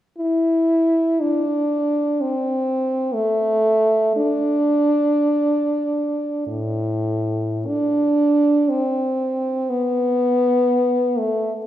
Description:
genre	classical, free, expressive piece for unaccompanied French horn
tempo	free time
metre	none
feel	none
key	unclear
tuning	A4 = 440 Hz
part	warm French horn	solo	0.2-11.5 s	A2 to E4	-17 LUFS	equal	none
room	wet recital hall reverb, RT60 1.6 s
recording	recorded in a church or concert hall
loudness	-17 LUFS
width	side -12 dB against mid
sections	0.2-6.5 A section; 6.5-11.7 B section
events	none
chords	none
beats	free time

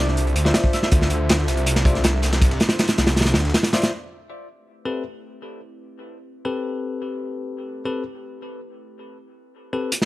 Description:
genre	drum and bass, jungle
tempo	160 BPM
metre	4/4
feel	straight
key	A minor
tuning	A4 = 440 Hz
part	melodica	melody	0.0-0.9 s	E5	-33 LUFS	equal	dub echo
part	warbly tape-like pad	sustained chords	0.0-10.1 s	A3 to E5	-34 LUFS	right 2 dB	chorus, built-in reverb
part	detuned saw bass	bass	0.0-3.5 s	C2 to D2	-21 LUFS	equal	none
part	crunchy breakbeat drum kit	drums	0.1-3.9, 9.9-10.1 s	hi-hat, kick drum, snare drum	-18 LUFS	equal	none
part	dusty soul sampler-style drum kit	drums	0.2-3.8 s	hi-hat, snare drum	-32 LUFS	left 1 dB	overdrive, high-pass filter on hats, high-pass filter on snare
part	bell-like tine electric piano	stabs	0.5-9.9 s	C4 to E5	-29 LUFS	left 3 dB	vintage 12-bit sampler grit, dub echo
room	small room ambience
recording	none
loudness	-18 LUFS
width	side -17 dB against mid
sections	0.0-3.9 A section; 3.9-10.1 B section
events	drop 0.0-3.9; kick drops out 3.2-3.9; filter sweep on ambient pad 3.9-10.1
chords	0.0 Dm9; 3.9 Am9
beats	0.17 0.55 | 0.92 1.29 1.67 2.04 | 2.42 2.79 3.17 3.54 | 3.92 4.29 4.67 5.04 | 5.42 5.79 6.17 6.54 | 6.92 7.29 7.67 8.04 | 8.42 8.79 9.17 9.54 | 9.92

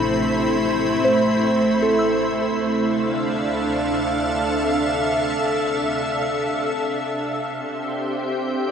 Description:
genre	ambient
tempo	free time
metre	none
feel	none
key	unclear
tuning	A4 = 439 Hz
part	soft additive organ-like pad	sustained chords	0.0-8.7 s	A3 to B5	-20 LUFS	equal	ensemble chorus, built-in reverb, shimmer reverb
part	soft synth bell	arpeggios	0.0-4.7, 8.7 s	D4 to E6	-25 LUFS	equal	chorus, tape echo, shimmer reverb
part	bright studio double bass section	bass	0.0-7.2 s	A1 to D2	-37 LUFS	equal	none
part	bowed-like drone	drone	0.0-7.3 s	C3 to C4	-32 LUFS	left 2 dB	built-in reverb, phaser
room	wet huge ambient reverb, RT60 7.7 s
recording	none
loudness	-19 LUFS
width	side -7 dB against mid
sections	0.0-7.3 A section; 7.3-8.7 B section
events	fade-out on double bass section 0.0-7.3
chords	0.0 Am7; 2.6 Dm7; 7.3 Cadd9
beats	free time

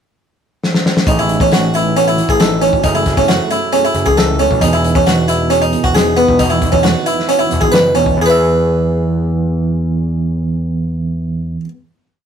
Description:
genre	math rock and midwest emo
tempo	135 BPM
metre	4/4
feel	straight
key	E major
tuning	A4 = 440 Hz
part	loose indie drum kit	drums	0.6-8.2 s	hi-hat, kick drum, snare drum	-17 LUFS	left 1 dB	none
part	electric guitar at the edge of break-up	accompaniment	1.1-11.9 s	E2 to G#4	-19 LUFS	right 5 dB	harmonic tremolo
part	harpsichord	arpeggios	1.1-11.7 s	B3 to E5	-14 LUFS	equal	none
part	growling picked electric bass	bass	1.1-11.6 s	E1 to E2	-18 LUFS	left 2 dB	overdrive
room	light reverb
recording	rough rehearsal-room recording, warm saturation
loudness	-11 LUFS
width	side -8 dB against mid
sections	0.0-1.1 pickup bar; 1.1-8.2 A section; 8.2-11.7 final chord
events	drum fill 0.6-1.1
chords	0.0 N.C.; 1.1 Amaj7#11; 2.8 F#m9; 4.6 Emaj7; 6.4 C#m11/E; 8.2 E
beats	0.18 0.62 | 1.07 1.51 1.96 2.40 | 2.84 3.29 3.73 4.18 | 4.62 5.07 5.51 5.95 | 6.40 6.84 7.29 7.73 | 8.17 8.62 9.06 9.50 | 9.95 10.39 10.83 11.28

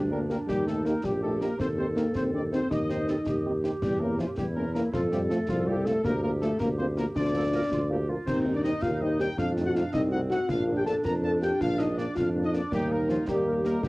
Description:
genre	military-style march for wind band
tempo	108 BPM (dotted quarters)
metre	6/8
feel	straight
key	Bb major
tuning	A4 = 439 Hz
part	mellow euphonium	second line	0.0-13.9 s	F3 to Bb4	-29 LUFS	left 1 dB	plate reverb
part	mellow woodwind section	second line	0.0-13.9 s	C4 to C5	-34 LUFS	right 2 dB	plate reverb
part	warm tuba	bass	0.0-13.9 s	Bb1 to F2	-30 LUFS	equal	none
part	clear trumpet section	melody	0.1-13.9 s	F4 to Bb5	-36 LUFS	left 1 dB	cassette tape, plate reverb
part	dark French horn section	accompaniment	0.1-13.9 s	F3 to G4	-34 LUFS	right 1 dB	none
part	concert snare drum, concert bass drum and clash cymbals	drums	0.3-13.9 s	none	-36 LUFS	equal	vintage 12-bit sampler grit, cassette tape
room	light reverb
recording	home recording on cassette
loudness	-25 LUFS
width	side -22 dB against mid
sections	0.0-13.9 A section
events	none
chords	0.5 Eb; 1.6 Cm/Eb; 3.8 Edim7; 4.9 F; 6.0 Bb/D; 8.3 Cm/Eb; 9.4 F7; 10.5 Bb; 12.7 Eb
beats	| 0.48 1.04 | 1.59 2.15 | 2.71 3.26 | 3.82 4.38 | 4.93 5.49 | 6.04 6.60 | 7.16 7.71 | 8.27 8.82 | 9.38 9.94 | 10.49 11.05 | 11.61 12.16 | 12.72 13.28 | 13.83

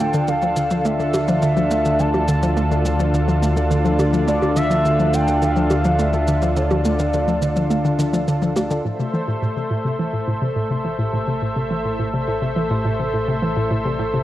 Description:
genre	ambient, sequencer-driven space music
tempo	105 BPM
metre	4/4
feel	straight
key	A minor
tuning	A4 = 442 Hz
part	expressive portamento lead	melody	0.0-8.2 s	D5 to A5	-24 LUFS	equal	chorus, ping-pong delay
part	lush unison pad	sustained chords	0.0-14.2 s	D3 to E5	-22 LUFS	equal	chorus
part	hollow square pluck	riff	0.0-14.2 s	A2 to A3	-22 LUFS	equal	chorus, ping-pong delay
part	fat analog bass	bass	0.0-14.2 s	A1 to D2	-23 LUFS	equal	none
part	shaker and bongos	percussion	0.1-8.8 s	none	-28 LUFS	equal	ping-pong delay
part	vibraphone with medium mallets	arpeggios	8.8-14.1 s	E4 to E5	-34 LUFS	right 1 dB	none
room	moderate plate reverb, RT60 2.2 s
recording	worn, warbling old tape, cassette tape, warbly pitch drift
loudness	-17 LUFS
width	side -14 dB against mid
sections	0.0-8.8 A section; 8.8-14.2 B section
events	fade-in on analog synth bass 8.8-14.2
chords	0.0 Dm; 8.8 Am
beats	0.28 0.85 1.42 | 1.99 2.56 3.14 3.71 | 4.28 4.85 5.42 5.99 | 6.56 7.14 7.71 8.28 | 8.85 9.42 9.99 10.56 | 11.14 11.71 12.28 12.85 | 13.42 13.99

